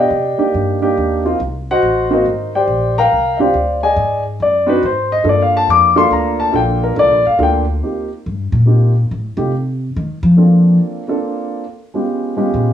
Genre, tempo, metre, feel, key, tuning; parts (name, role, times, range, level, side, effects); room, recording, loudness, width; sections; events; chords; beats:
jazz piano trio; 140 BPM; 3/4; swing 65% on 8ths; G minor; A4 = 439 Hz
dark grand piano; melody; 0.0-12.7 s; G#3 to D6; -14 LUFS; left 1 dB
upright bass; bass; 0.0-12.7 s; G1 to F3; -16 LUFS; left 1 dB
moderate studio reverb, RT60 0.7 s; band playing live in one room, small room ambience; -12 LUFS; side -10 dB against mid
0.0-7.8 A section; 7.8-12.7 A section
grand piano solo 0.0-7.8; upright bass solo 7.8-12.7
0.1 Cm9; 1.4 Ab9; 2.7 Bb69; 4.0 Ab7#11; 5.2 Gm9; 7.8 Eb6; 9.1 F7 (rootless); 10.4 Bbmaj7; 11.7 C#7#11
| 0.11 0.54 0.97 | 1.40 1.82 2.25 | 2.68 3.11 3.54 | 3.97 4.39 4.82 | 5.25 5.68 6.11 | 6.53 6.96 7.39 | 7.82 8.24 8.67 | 9.10 9.53 9.95 | 10.38 10.81 11.23 | 11.66 12.09 12.52